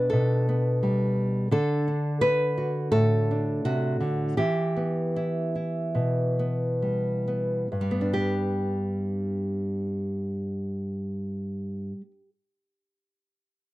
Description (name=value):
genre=folk, solo fingerstyle acoustic guitar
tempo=66-87 BPM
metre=4/4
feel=rubato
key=G major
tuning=A4 = 441 Hz
part: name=nylon-string guitar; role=solo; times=0.0-12.3 s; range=G2 to B4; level=-24 LUFS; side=equal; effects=none
room=little or no reverb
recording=dry, close 1970s-style studio recording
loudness=-24 LUFS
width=side -17 dB against mid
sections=0.0-7.7 A section; 7.7-11.3 B section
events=slowing down 1.5-7.7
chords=0.0 Gadd9/B; 1.5 D; 4.4 Em; 7.7 G